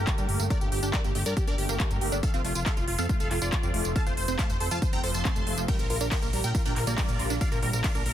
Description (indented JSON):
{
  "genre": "uplifting trance",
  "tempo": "139 BPM",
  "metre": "4/4",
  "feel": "straight",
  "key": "unclear",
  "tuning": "A4 = 435 Hz",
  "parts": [
    { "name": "supersaw stab", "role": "melody", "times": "0.0-8.1 s", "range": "F4 to C6", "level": "-33 LUFS", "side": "equal", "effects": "phaser, sidechain pumping, dub echo" },
    { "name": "fat analog bass", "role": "bass", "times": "0.0-8.1 s", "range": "F1 to Bb2", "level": "-30 LUFS", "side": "equal", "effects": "sidechain pumping" },
    { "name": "impact", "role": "sound effects", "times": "0.0-0.5 s", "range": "none", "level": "barely audible", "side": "none", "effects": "none" },
    { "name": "tight sequenced synth", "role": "arpeggios", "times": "0.1-8.0 s", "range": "F3 to A4", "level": "-36 LUFS", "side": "right 4 dB", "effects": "chorus, phaser, sidechain pumping, dub echo" },
    { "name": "electronic kick drum", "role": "drums", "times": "0.1-7.9 s", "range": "none", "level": "-28 LUFS", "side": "equal", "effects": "overdrive" },
    { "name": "techno drum kit", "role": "drums", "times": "0.1-8.1 s", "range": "handclaps, hi-hat, ride cymbal, tambourine", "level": "-33 LUFS", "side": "equal", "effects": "overdrive" }
  ],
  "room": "digital ambience",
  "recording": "dense, heavily limited modern master",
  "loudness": "-24 LUFS",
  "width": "side -11 dB against mid",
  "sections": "0.0-8.1 A section",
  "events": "impact 0.0-0.5",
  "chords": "0.0 Gmadd9; 2.2 F; 5.7 Bb6"
}